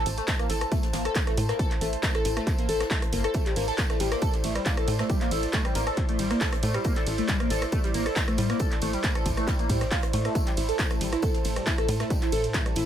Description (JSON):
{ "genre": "driving peak-time techno", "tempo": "137 BPM", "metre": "4/4", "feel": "straight", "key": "A phrygian", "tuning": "A4 = 441 Hz", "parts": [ { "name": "airy breathy pad", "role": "texture", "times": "0.0-12.9 s", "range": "E4 to A5", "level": "-33 LUFS", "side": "right 2 dB", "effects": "chorus, sidechain pumping" }, { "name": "tight sequencer bass", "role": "bass", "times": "0.1-12.9 s", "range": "G1 to A2", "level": "-29 LUFS", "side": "equal", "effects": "sidechain pumping" }, { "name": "jazz brush drum kit", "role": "drums", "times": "0.1-12.9 s", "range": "hi-hat, snare drum, tambourine", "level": "-42 LUFS", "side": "equal", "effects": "sidechain pumping on hats, high-pass filter on hats, high-pass filter on snare, sidechain pumping on perc, high-pass filter on perc, high-pass filter on room" }, { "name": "punchy analog drum machine", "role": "drums", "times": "0.1-12.9 s", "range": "handclaps, hi-hat, ride cymbal, rim click", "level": "-32 LUFS", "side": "right 1 dB", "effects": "sidechain pumping on hats, sidechain pumping on cymbals" }, { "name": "overdriven synth lead", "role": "riff", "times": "0.2-12.8 s", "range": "G3 to A4", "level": "-30 LUFS", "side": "left 1 dB", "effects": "distortion, phaser, analog chorus, sidechain pumping, ping-pong delay" }, { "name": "electronic kick drum", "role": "drums", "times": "0.3-12.6 s", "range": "none", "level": "-27 LUFS", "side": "equal", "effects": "none" }, { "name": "swarming drone", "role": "drone", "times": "11.5-12.9 s", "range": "A2", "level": "-40 LUFS", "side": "left 1 dB", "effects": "none" } ], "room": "studio reverb", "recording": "none", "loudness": "-24 LUFS", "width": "side -10 dB against mid", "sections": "0.0-12.9 A section", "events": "none", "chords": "0.0 Am" }